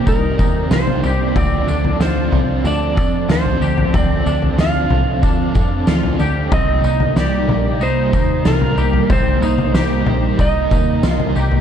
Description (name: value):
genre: dream pop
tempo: 93 BPM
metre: 4/4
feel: straight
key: C dorian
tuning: A4 = 440 Hz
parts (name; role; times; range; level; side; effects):
- clean lap steel guitar; melody; 0.0-11.3 s; Bb4 to F5; -22 LUFS; right 3 dB; ping-pong delay
- overdriven semi-hollow guitar; accompaniment; 0.0-11.6 s; C3 to Bb4; -25 LUFS; right 4 dB; tremolo, ensemble chorus
- hollow soft pad; sustained chords; 0.0-11.6 s; C3 to D5; -22 LUFS; equal; ensemble chorus
- twangy electric guitar; arpeggios; 0.0-11.6 s; C4 to G4; -26 LUFS; left 5 dB; ensemble chorus, ping-pong delay
- picked electric bass; bass; 0.0-11.6 s; Bb1 to F2; -20 LUFS; equal; none
- oversized low-tuned drum kit; drums; 0.1-11.6 s; kick drum, snare drum, tambourine, toms; -18 LUFS; left 1 dB; none
room: studio ambience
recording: dark, warm production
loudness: -14 LUFS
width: side -8 dB against mid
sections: 0.0-11.6 A section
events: none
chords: 0.0 Cm7; 1.4 Dm7; 6.5 Cm7